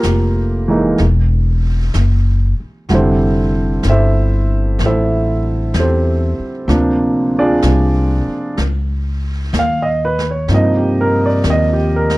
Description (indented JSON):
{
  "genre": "jazz ballad",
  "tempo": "63 BPM",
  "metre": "4/4",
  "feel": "swing 68% on 8ths",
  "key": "unclear",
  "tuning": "A4 = 441 Hz",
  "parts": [
    { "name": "dark grand piano", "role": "accompaniment", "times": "0.0-12.2 s", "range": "C3 to F5", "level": "-16 LUFS", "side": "right 1 dB", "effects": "none" },
    { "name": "upright bass", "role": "bass", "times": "0.0-12.2 s", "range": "E1 to G2", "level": "-15 LUFS", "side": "left 1 dB", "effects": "none" },
    { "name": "jazz brush drum kit", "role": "drums", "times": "0.0-12.2 s", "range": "brushed snare drum, hi-hat, snare drum", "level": "-28 LUFS", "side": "equal", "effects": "none" }
  ],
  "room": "small room reverb",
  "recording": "none",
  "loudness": "-13 LUFS",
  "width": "side -20 dB against mid",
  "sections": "0.0-12.2 A section",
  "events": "none",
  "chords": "0.0 Gm9; 1.0 Esus2; 2.9 Fmaj9; 6.7 Dm7b5; 8.6 C#sus2; 10.5 Cm11"
}